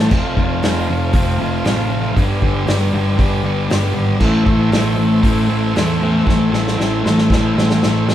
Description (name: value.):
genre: garage rock duo or trio.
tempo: 117 BPM.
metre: 4/4.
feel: straight.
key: A minor.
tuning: A4 = 440 Hz.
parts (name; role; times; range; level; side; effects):
combo organ; sustained chords; 0.0-8.1 s; G4 to A5; -25 LUFS; left 1 dB; none.
fuzz guitar; riff; 0.0-8.1 s; F2 to A3; -16 LUFS; equal; distortion.
picked electric bass; bass; 0.0-8.1 s; F1 to E2; -21 LUFS; right 1 dB; none.
vintage drum kit; drums; 0.1-8.1 s; crash cymbal, hi-hat, kick drum, snare drum; -18 LUFS; equal; none.
room: wet large studio reverb, RT60 1.0 s.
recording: band playing live in one room.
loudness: -14 LUFS.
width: side -11 dB against mid.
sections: 0.0-8.1 A section.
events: drum fill 6.3-8.1.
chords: 0.1 F; 2.2 G; 4.2 Am.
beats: | 0.11 0.63 1.14 1.65 | 2.16 2.67 3.19 3.70 | 4.21 4.72 5.24 5.75 | 6.26 6.78 7.29 7.80.